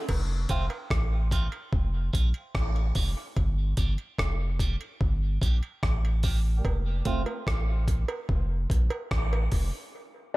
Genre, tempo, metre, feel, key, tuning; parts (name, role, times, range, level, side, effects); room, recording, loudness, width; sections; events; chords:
dub reggae; 73 BPM; 4/4; straight; F major; A4 = 442 Hz
soft dub sub bass; bass; 0.1-9.7 s; F1 to Bb1; -26 LUFS; equal
breakbeat sampler-style drum kit; drums; 0.1-9.7 s; crash cymbal, hi-hat, kick drum, rim click; -29 LUFS; equal
cowbell; percussion; 0.1-9.5 s; -39 LUFS; right 3 dB; high-pass filter on perc, dub echo
clean electric guitar; accompaniment; 0.5-7.2 s; A3 to G4; -37 LUFS; right 5 dB; spring reverb, high-pass filter, dub echo
little or no reverb; echo-heavy mix; -25 LUFS; side -20 dB against mid
0.1-10.4 A section
filter sweep 0.0-6.6; break 9.9-10.4
0.1 F; 3.4 Gm; 6.6 F